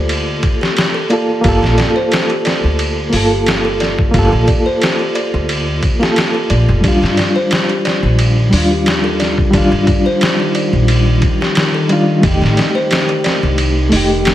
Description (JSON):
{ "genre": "trip hop", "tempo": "89 BPM", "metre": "4/4", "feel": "swing 54% on 16ths", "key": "G minor", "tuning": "A4 = 439 Hz", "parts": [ { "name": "reed electric piano", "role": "accompaniment", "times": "0.0-14.3 s", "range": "G3 to A4", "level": "-16 LUFS", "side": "equal", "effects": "fast tremolo, tape echo" }, { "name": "upright bass", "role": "bass", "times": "0.0-14.3 s", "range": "F1 to G2", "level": "-16 LUFS", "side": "equal", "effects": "none" }, { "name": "trip hop sampler-style drum kit", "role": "drums", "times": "0.1-14.3 s", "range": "hi-hat, kick drum, ride cymbal, snare drum", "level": "-16 LUFS", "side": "equal", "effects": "none" }, { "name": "music box", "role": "arpeggios", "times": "0.6-14.3 s", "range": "G4 to D5", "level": "-21 LUFS", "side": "left 2 dB", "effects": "ping-pong delay" }, { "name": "warbly tape-like pad", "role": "sustained chords", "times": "7.8-14.3 s", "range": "Eb3", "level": "-21 LUFS", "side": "right 1 dB", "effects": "chorus, built-in reverb, phaser" } ], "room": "light reverb, digital ambience", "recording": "vinyl crackle", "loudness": "-11 LUFS", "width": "side -13 dB against mid", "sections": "0.0-14.3 A section", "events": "none", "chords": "0.0 Gm7; 6.8 Ebmaj7; 12.2 F7", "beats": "0.10 0.77 | 1.45 2.12 2.79 3.47 | 4.14 4.82 5.49 6.16 | 6.84 7.51 8.19 8.86 | 9.54 10.21 10.88 11.56 | 12.23 12.90 13.58 14.25" }